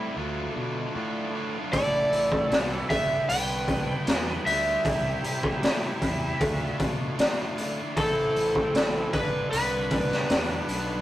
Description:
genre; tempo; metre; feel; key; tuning
blues rock power trio and southern rock; 77 BPM; 4/4; straight; unclear; A4 = 439 Hz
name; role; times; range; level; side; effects
distorted electric guitar; riff; 0.0-11.0 s; G2 to F4; -32 LUFS; equal; overdrive
fuzz fingered electric bass; bass; 0.0-11.0 s; G1 to C3; -34 LUFS; equal; overdrive
overdriven slide guitar; melody; 1.7-11.0 s; A4 to G5; -27 LUFS; equal; none
biting lead guitar; second line; 1.7-11.0 s; C4 to B4; -36 LUFS; right 3 dB; overdrive
raw garage drum kit; drums; 1.7-10.9 s; hi-hat, kick drum, snare drum; -27 LUFS; equal; none
room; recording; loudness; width
moderate studio reverb, RT60 0.6 s; rough rehearsal-room recording, tube saturation; -24 LUFS; side -14 dB against mid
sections
0.0-11.0 A section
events
none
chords
0.2 Dm; 1.7 Am; 2.9 G; 4.8 C; 6.4 Dm; 8.0 Am; 9.1 G

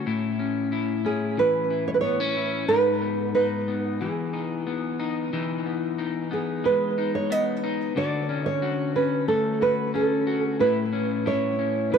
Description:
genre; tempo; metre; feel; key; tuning
dream pop; 91 BPM; 4/4; straight; E major; A4 = 440 Hz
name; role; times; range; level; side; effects
electric guitar at the edge of break-up; arpeggios; 0.0-12.0 s; G#2 to F#4; -26 LUFS; left 5 dB; wide subtle chorus, digital delay
nylon-string guitar; melody; 1.1-12.0 s; G#4 to D#5; -24 LUFS; right 4 dB; digital delay
room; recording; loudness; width
moderate plate reverb, RT60 2.6 s; dark, warm production; -22 LUFS; side -7 dB against mid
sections
0.0-5.3 A section; 5.3-12.0 A section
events
none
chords
0.0 A; 2.7 G#m; 4.0 Emaj7; 8.0 Dmaj7; 10.6 A

